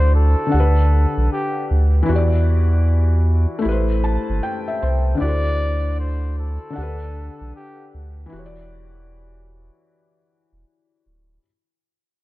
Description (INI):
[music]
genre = lo-fi hip hop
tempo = 77 BPM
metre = 4/4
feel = swing 62% on 16ths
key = unclear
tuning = A4 = 438 Hz
[part]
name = trumpet with bucket mute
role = melody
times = 0.0-7.9 s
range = G4 to D5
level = -27 LUFS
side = equal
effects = low-pass filter, tape echo
[part]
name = felt-muted upright piano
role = accompaniment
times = 0.0-11.5 s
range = D3 to A5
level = -24 LUFS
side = left 3 dB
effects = low-pass filter
[part]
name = saturated sub bass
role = bass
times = 0.0-11.4 s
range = D1 to E2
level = -17 LUFS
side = equal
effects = none
[sound]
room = small room reverb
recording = dark, warm production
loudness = -16 LUFS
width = side -17 dB against mid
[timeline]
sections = 0.0-11.4 A section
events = fade-out 0.0-11.4; felt piano fill 3.6-5.2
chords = 0.0 D9; 0.5 Gmaj9; 2.1 Em9; 3.6 Am9; 5.2 D9; 6.8 Gmaj9; 8.3 Em9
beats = 0.53 1.31 | 2.09 2.87 3.65 4.43 | 5.21 5.99 6.77 7.54 | 8.32 9.10 9.88 10.66